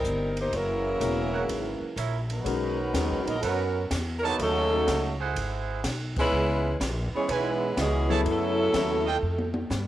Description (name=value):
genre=jazz, big band swing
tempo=124 BPM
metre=4/4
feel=swing 68% on 8ths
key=B major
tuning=A4 = 441 Hz
part: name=warm saxophone section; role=melody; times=0.0-9.7 s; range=E3 to D#5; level=-28 LUFS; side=left 1 dB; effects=cassette tape
part: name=upright bass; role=bass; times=0.0-9.9 s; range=Fb1 to G2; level=-31 LUFS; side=equal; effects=tube saturation
part: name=open jazz drum kit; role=drums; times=0.0-9.9 s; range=crash cymbal, hi-hat, kick drum, ride cymbal, snare drum, toms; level=-35 LUFS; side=equal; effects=cassette tape
part: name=dark trombone section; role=second line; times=0.5-9.7 s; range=B2 to A#4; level=-32 LUFS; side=right 6 dB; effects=cassette tape
part: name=warm grand piano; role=accompaniment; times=1.0-4.9, 8.1-9.0 s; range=F#3 to Bb4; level=-31 LUFS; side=left 7 dB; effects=cassette tape
part: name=bright trumpet section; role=stabs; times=1.3-9.2 s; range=D#4 to A5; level=-34 LUFS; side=right 7 dB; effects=cassette tape
room=moderate spring reverb, RT60 2.2 s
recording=home recording on cassette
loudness=-24 LUFS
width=side -13 dB against mid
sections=0.0-2.5 A section; 2.5-9.9 B section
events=band accent 6.1; drum fill 9.2-9.7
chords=0.0 Eb6; 0.5 Gb7; 2.5 Bmaj7; 4.4 D#m7b5; 5.4 G#7alt; 6.3 C#m7; 8.3 F#m7; 9.2 Fadd9